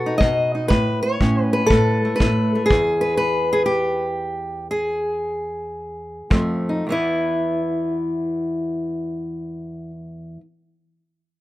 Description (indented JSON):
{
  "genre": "acoustic country blues, solo or duo",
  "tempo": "107-120 BPM",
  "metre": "4/4",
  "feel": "swing 68% on 8ths",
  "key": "E major",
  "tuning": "A4 = 441 Hz",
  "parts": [
    { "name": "fingerpicked steel-string acoustic guitar", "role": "melody", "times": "0.0-10.4 s", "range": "E2 to D#5", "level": "-20 LUFS", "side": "equal", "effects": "plate reverb" },
    { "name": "kick drum", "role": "drums", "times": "0.2-2.9, 6.3-6.5 s", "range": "none", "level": "-20 LUFS", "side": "equal", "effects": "none" }
  ],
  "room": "moderate small room reverb, RT60 0.5 s",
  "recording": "rough home demo mix",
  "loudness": "-18 LUFS",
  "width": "side -16 dB against mid",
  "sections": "0.0-6.9 A section; 6.9-11.3 B section",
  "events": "slowing down 2.7-6.9; stop 2.7-6.3",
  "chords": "0.0 B7; 0.7 A; 2.7 N.C.; 6.3 F7; 6.9 E5"
}